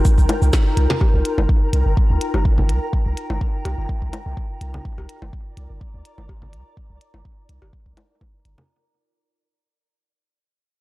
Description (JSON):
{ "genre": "minimal techno", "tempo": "125 BPM", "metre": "4/4", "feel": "swing 54% on 16ths", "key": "C minor", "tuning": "A4 = 440 Hz", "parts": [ { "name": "punchy sub bass", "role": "bass", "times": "0.0-8.6 s", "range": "G1 to D2", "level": "-20 LUFS", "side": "equal", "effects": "sidechain pumping" }, { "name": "flickering grainy texture", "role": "texture", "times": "0.0-8.7 s", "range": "Bb4 to Bb5", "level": "-33 LUFS", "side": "left 1 dB", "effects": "built-in reverb, sidechain pumping" }, { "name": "warbly tape-like pad", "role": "texture", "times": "0.0-8.7 s", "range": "Eb4 to Bb5", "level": "-29 LUFS", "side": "left 2 dB", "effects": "chorus, built-in reverb, sidechain pumping" }, { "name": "electronic kick drum", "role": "drums", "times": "0.1-8.3 s", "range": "none", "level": "-18 LUFS", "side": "equal", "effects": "none" }, { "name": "minimal click drum kit", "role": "drums", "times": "0.1-8.6 s", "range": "hi-hat, shaker, snare drum", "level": "-28 LUFS", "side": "equal", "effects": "none" }, { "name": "bongos, congas and cowbell", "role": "percussion", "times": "0.3-8.7 s", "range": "none", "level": "-27 LUFS", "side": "left 1 dB", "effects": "analog delay" } ], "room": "digital ambience", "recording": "dry, gritty hardware recording, transformer saturation", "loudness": "-17 LUFS", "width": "side -19 dB against mid", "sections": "0.0-8.7 A section", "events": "fade-out 0.0-8.7", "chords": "0.0 Cm7", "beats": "0.05 0.53 | 1.01 1.49 1.97 2.45 | 2.93 3.41 3.89 4.37 | 4.85 5.33 5.81 6.29 | 6.77 7.25 7.73 8.21" }